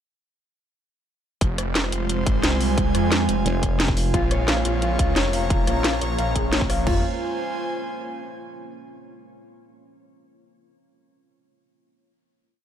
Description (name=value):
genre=dark technical drum and bass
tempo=176 BPM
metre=4/4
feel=straight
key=F minor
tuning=A4 = 435 Hz
part: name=deep dark ambient pad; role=sustained chords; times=1.9-7.0 s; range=Ab3 to Db5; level=-29 LUFS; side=right 2 dB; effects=chorus, built-in reverb, sidechain pumping
part: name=wide detuned saw bass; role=bass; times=1.4-7.0 s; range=F1 to F2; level=-24 LUFS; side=equal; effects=chorus, overdrive
part: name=drum and bass drum kit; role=drums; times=1.4-6.8 s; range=hi-hat, rim click, snare drum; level=-24 LUFS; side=equal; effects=none
part: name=dubstep drum kit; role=drums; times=1.4-6.9 s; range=crash cymbal, kick drum, toms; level=-24 LUFS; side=equal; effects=overdrive
part: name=airy breathy pad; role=texture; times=1.4-8.2 s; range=F4 to Bb5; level=-29 LUFS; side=right 1 dB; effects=chorus, sidechain pumping
part: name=pulsing pluck wobble bass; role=bass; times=3.5-4.1 s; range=F1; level=-23 LUFS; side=equal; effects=chorus
part: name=felt-muted upright piano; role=arpeggios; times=4.1-7.0 s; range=F4 to F5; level=-29 LUFS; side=left 4 dB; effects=sidechain pumping, dub echo
room=light reverb, digital ambience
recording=none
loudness=-20 LUFS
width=side -9 dB against mid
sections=1.4-6.9 drop; 6.9-8.2 final chord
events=drop 1.4-6.9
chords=1.4 Fm; 4.1 Bbm; 6.9 Fm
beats=| 1.41 1.75 2.09 2.44 | 2.78 3.12 3.46 3.80 | 4.14 4.48 4.82 5.16 | 5.50 5.84 6.18 6.53 | 6.87 7.21 7.55 7.89